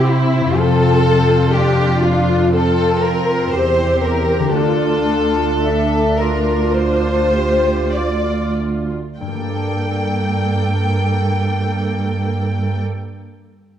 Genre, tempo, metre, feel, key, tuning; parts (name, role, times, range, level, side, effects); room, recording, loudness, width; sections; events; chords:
cinematic, emotional film score for orchestra; 46-62 BPM; 4/4; rubato; G dorian; A4 = 443 Hz
rich studio violin section; second line; 0.0-12.8 s; E4 to G5; -18 LUFS; left 2 dB
rich studio viola section; accompaniment; 0.0-12.8 s; Bb3 to E5; -22 LUFS; right 2 dB
concert harp; arpeggios; 0.0-13.2 s; G2 to A5; -22 LUFS; left 4 dB
warm studio cello section; bass; 0.0-12.8 s; D2 to C3; -19 LUFS; right 2 dB
wet scoring stage reverb, RT60 1.6 s; dark, warm production; -14 LUFS; side -10 dB against mid
0.0-9.2 A section; 9.2-13.8 B section
slowing down 0.0-9.2
0.0 C; 0.6 F; 4.6 Dm; 9.2 Gmadd9